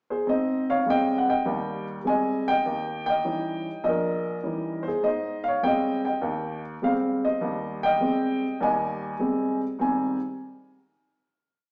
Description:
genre	solo jazz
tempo	101 BPM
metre	4/4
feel	swing 67% on 8ths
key	Ab major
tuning	A4 = 441 Hz
part	warm upright piano	solo	0.1-10.2 s	Bb1 to Ab5	-26 LUFS	equal	none
room	wet stone room reverb, RT60 1.3 s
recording	band playing live in one room, small speaker sound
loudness	-26 LUFS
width	mono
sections	0.0-0.3 pickup bar; 0.3-9.8 A section; 9.8-11.7 final chord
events	none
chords	0.3 Abmaj7; 2.7 Eb7b9; 5.0 Abmaj7

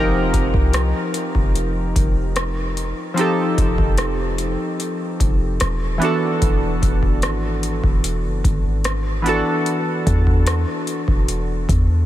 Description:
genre	contemporary R&B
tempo	74 BPM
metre	4/4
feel	straight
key	F lydian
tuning	A4 = 440 Hz
part	warm analog keys	accompaniment	0.0-12.1 s	E3 to Bb4	-21 LUFS	equal	chorus
part	warm 808-style bass	bass	0.0-12.1 s	E1 to E2	-20 LUFS	equal	none
part	booming analog drum machine	drums	0.3-11.9 s	hi-hat, kick drum, rim click	-22 LUFS	equal	overdrive
room	light reverb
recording	none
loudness	-17 LUFS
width	side -13 dB against mid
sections	0.0-12.1 A section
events	none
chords	0.0 F9sus4; 6.0 E9sus4

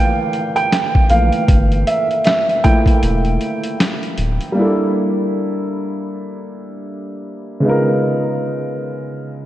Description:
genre	lo-fi hip hop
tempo	78 BPM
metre	4/4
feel	swing 59% on 16ths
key	G dorian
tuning	A4 = 440 Hz
part	dark upright piano	accompaniment	0.0-9.5 s	C#3 to G5	-17 LUFS	right 1 dB	cassette tape, low-pass filter
part	boom bap sampler-style drum kit	drums	0.3-4.6 s	hi-hat, kick drum, snare drum	-16 LUFS	equal	none
part	saturated sub bass	bass	1.1-4.4 s	D1 to Bb1	-17 LUFS	equal	none
room	wet lush hall reverb, RT60 2.6 s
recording	dreamy mix soaked in reverb, cassette tape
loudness	-14 LUFS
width	side -14 dB against mid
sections	0.0-4.6 A section; 4.6-9.5 B section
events	upright piano solo 0.0-4.6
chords	0.0 Gm69; 7.6 C#13

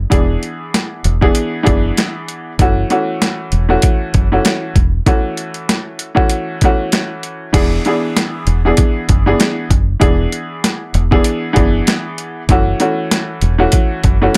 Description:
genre	hip hop, boom-bap hip-hop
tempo	97 BPM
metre	4/4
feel	swing 57% on 16ths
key	unclear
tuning	A4 = 440 Hz
part	deep dub fingered electric bass	bass	0.0-14.3 s	E1 to F#1	-18 LUFS	equal	none
part	clear upright piano	accompaniment	0.1-14.4 s	E3 to G#4	-19 LUFS	equal	cassette tape, high-pass filter, low-pass filter, plate reverb
part	boom bap sampler-style drum kit	drums	0.1-14.4 s	crash cymbal, hi-hat, kick drum, snare drum	-17 LUFS	equal	overdrive
room	light reverb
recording	none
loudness	-15 LUFS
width	mono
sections	0.0-7.5 A section; 7.5-14.4 B section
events	break 5.1-7.5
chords	0.0 E7; 2.6 F#m7; 7.5 E7; 12.5 F#m7

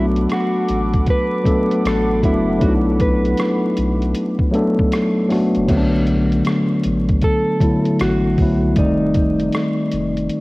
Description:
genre	lo-fi hip hop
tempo	78 BPM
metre	4/4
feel	swing 65% on 16ths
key	B phrygian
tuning	A4 = 440 Hz
part	mellow electric guitar	melody	0.0-10.4 s	Eb4 to B4	-23 LUFS	right 1 dB	tape echo
part	mellow tine electric piano	accompaniment	0.0-10.4 s	D3 to D5	-17 LUFS	left 1 dB	cassette tape
part	warbly tape-like pad	sustained chords	0.0-5.6 s	A4 to D6	-30 LUFS	right 1 dB	chorus, built-in reverb, cassette tape
part	soft dub sub bass	bass	0.0-10.3 s	F1 to C2	-23 LUFS	equal	none
part	lo-fi sampler-style drum kit	drums	0.2-10.4 s	crash cymbal, hi-hat, kick drum, rim click	-21 LUFS	equal	vintage 12-bit sampler grit, cassette tape
room	light reverb, digital ambience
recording	home recording on cassette, vinyl crackle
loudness	-15 LUFS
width	side -21 dB against mid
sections	0.0-5.7 A section; 5.7-10.4 A section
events	none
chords	0.0 Bm7; 8.8 F13

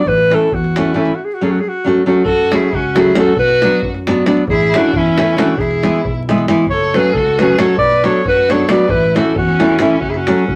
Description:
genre	balkan folk, Balkan wedding band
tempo	271 BPM (eighths)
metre	5/8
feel	straight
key	F# minor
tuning	A4 = 440 Hz
part	warm alto saxophone	melody	0.0-10.6 s	E4 to D5	-18 LUFS	equal	none
part	overdriven fingered electric bass	bass	0.1-10.6 s	E1 to F#2	-24 LUFS	equal	none
part	davul	percussion	0.1-10.6 s	none	-24 LUFS	equal	none
part	nylon-string guitar	accompaniment	0.3-10.4 s	E3 to F#4	-16 LUFS	equal	none
part	rich violin	second line	2.3-10.6 s	C#4 to B4	-24 LUFS	equal	none
room	wet studio reverb, RT60 0.5 s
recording	vinyl crackle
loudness	-14 LUFS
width	mono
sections	0.0-2.3 A section; 2.3-10.6 A section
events	none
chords	0.1 A; 1.2 F#m; 3.4 Bm; 4.5 A; 5.6 E; 6.7 F#m; 7.8 Bm; 8.9 A; 10.0 F#m

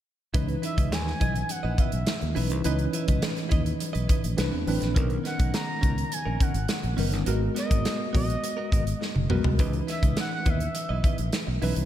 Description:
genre	polished 1980s jazz-funk pop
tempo	104 BPM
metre	4/4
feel	straight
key	unclear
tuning	A4 = 440 Hz
part	tine electric piano	accompaniment	0.3-11.9 s	D#3 to B4	-31 LUFS	equal	overdrive, fast stereo tremolo, analog chorus
part	direct-recorded clean electric guitar	riff	0.3-11.8 s	B3 to E5	-37 LUFS	right 6 dB	wide subtle chorus
part	fingered electric bass	bass	0.3-11.9 s	F#1 to E2	-28 LUFS	equal	none
part	modern studio drum kit	drums	0.3-11.9 s	hi-hat, kick drum, snare drum, toms	-26 LUFS	equal	none
part	congas	percussion	0.3-11.8 s	none	-42 LUFS	left 8 dB	none
part	expressive synth lead	melody	0.6-11.6 s	D#5 to A#5	-34 LUFS	equal	chorus, slapback echo
room	light reverb, small room ambience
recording	none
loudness	-24 LUFS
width	side -12 dB against mid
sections	0.3-11.9 A section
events	drum fill 9.0-9.6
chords	0.3 C#m9; 4.4 Cmaj9; 5.0 Bmaj9; 7.3 G#m9; 9.6 C#m9

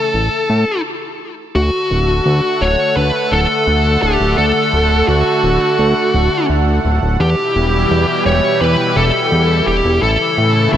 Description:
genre	synthwave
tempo	85 BPM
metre	4/4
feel	straight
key	D major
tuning	A4 = 440 Hz
part	high-gain lead guitar	melody	0.0-10.8 s	F#4 to C#5	-16 LUFS	left 1 dB	distortion, ping-pong delay
part	warm analog pad	sustained chords	0.0-10.8 s	B2 to F#5	-18 LUFS	right 1 dB	chorus
part	fat analog bass	bass	0.1-10.8 s	D1 to A2	-15 LUFS	equal	none
room	moderate lush hall reverb, RT60 2.3 s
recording	bright 1980s-style digital production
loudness	-12 LUFS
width	side -10 dB against mid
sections	0.0-1.6 A section; 1.6-10.8 B section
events	stop 0.8-1.6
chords	0.0 A; 1.6 D; 7.2 Em; 10.0 A

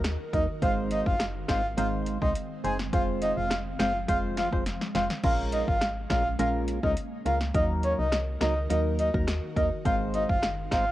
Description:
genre	dancehall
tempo	104 BPM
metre	4/4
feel	straight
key	Bb minor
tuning	A4 = 440 Hz
part	percussive organ stab	accompaniment	0.0-10.9 s	Gb3 to C5	-31 LUFS	right 1 dB	chorus, phaser, cassette tape
part	ethereal airy pad	sustained chords	0.0-10.9 s	Eb3 to Bb4	-40 LUFS	equal	ensemble chorus, built-in reverb, tremolo, sidechain pumping, cassette tape
part	woody FM bass	bass	0.0-10.9 s	F1 to Eb2	-31 LUFS	equal	none
part	deep house drum kit	drums	0.0-10.9 s	crash cymbal, hi-hat, kick drum, rim click, snare drum	-30 LUFS	equal	overdrive, cassette tape
part	downlifter	sound effects	0.2-0.6 s	none	barely audible	none	none
part	breathy flute-like synth lead	melody	0.3-10.9 s	Db5 to Ab5	-29 LUFS	equal	chorus, cassette tape, tape echo
room	light reverb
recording	home recording on cassette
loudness	-25 LUFS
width	side -15 dB against mid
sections	0.0-10.9 A section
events	drum fill 4.7-5.2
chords	0.0 Ebm; 0.6 Ab; 2.9 Fm; 5.2 Bbm7; 7.5 Ebm; 9.9 Ab

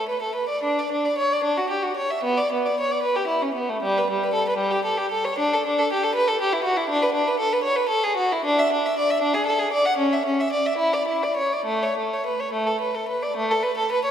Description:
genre	classical, baroque-style suite movement for unaccompanied violin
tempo	66-81 BPM (dotted quarters)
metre	6/8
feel	rubato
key	D major, A major from 6.9 s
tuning	A4 = 441 Hz
part	rich violin	solo	0.0-14.1 s	G3 to F#5	-20 LUFS	equal	none
room	wet church reverb, RT60 3.5 s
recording	heard from further back in the room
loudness	-20 LUFS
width	side -9 dB against mid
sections	0.6-13.4 A section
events	none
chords	none

